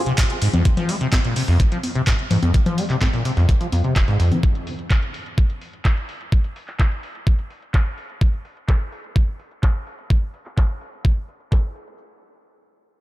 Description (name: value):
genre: acid house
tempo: 127 BPM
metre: 4/4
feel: straight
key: F minor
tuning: A4 = 440 Hz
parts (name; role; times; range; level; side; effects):
- acid bass, saw; riff; 0.1-4.4 s; F1 to Ab3; -20 LUFS; equal; overdrive, lush chorus, sidechain pumping, diffuse ambient delay
- booming analog drum machine; drums; 0.1-12.0 s; congas, handclaps, hi-hat; -27 LUFS; left 1 dB; low-pass filter on hats, low-pass filter on perc, low-pass filter on snare, low-pass filter on toms
- dusty soul sampler-style drum kit; drums; 0.2-4.4 s; hi-hat, snare drum; -35 LUFS; equal; high-pass filter on hats, high-pass filter on snare, high-pass filter on room
- electronic kick drum; drums; 0.2-11.6 s; none; -17 LUFS; equal; none
room: light reverb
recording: none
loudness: -18 LUFS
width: side -16 dB against mid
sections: 0.0-12.0 A section; 12.0-13.0 B section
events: filter sweep on drum 0.0-12.0; filter sweep on acid bass 0.0-4.4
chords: none